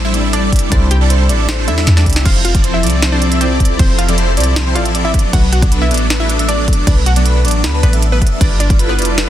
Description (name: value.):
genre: future bass.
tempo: 156 BPM.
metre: 4/4.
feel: half-time.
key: F lydian.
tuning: A4 = 440 Hz.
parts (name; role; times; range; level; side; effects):
wide unison pluck; melody; 0.0-9.1 s; B3 to G5; -22 LUFS; equal; cassette tape, sidechain pumping, ping-pong delay.
felt-muted upright piano; accompaniment; 0.0-2.3 s; G3 to G4; -25 LUFS; equal; sidechain pumping, ping-pong delay.
airy dreamy lead; arpeggios; 0.0-9.3 s; B4 to E5; -25 LUFS; equal; chorus, sidechain pumping.
supersaw chords; riff; 0.0-9.3 s; F3 to E5; -18 LUFS; right 1 dB; phaser, vintage 12-bit sampler grit, sidechain pumping.
warm 808-style bass; bass; 0.0-9.3 s; F1 to E2; -14 LUFS; equal; sidechain pumping.
trap drum kit; drums; 0.1-9.3 s; crash cymbal, hi-hat, snare drum; -20 LUFS; right 2 dB; none.
electronic kick drum; drums; 0.5-8.8 s; none; -13 LUFS; equal; none.
warm chamber string section; sustained chords; 2.3-9.3 s; F3 to B4; -27 LUFS; left 3 dB; sidechain pumping.
room: digital ambience.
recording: dense, heavily limited modern master.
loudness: -10 LUFS.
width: side -12 dB against mid.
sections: 0.0-2.3 A section; 2.3-9.3 A section.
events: drop 0.0-2.3, 2.3-9.3; drum fill 1.9-2.3.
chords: 0.0 C69; 2.3 Fmaj7; 5.1 Bm7; 8.4 G13.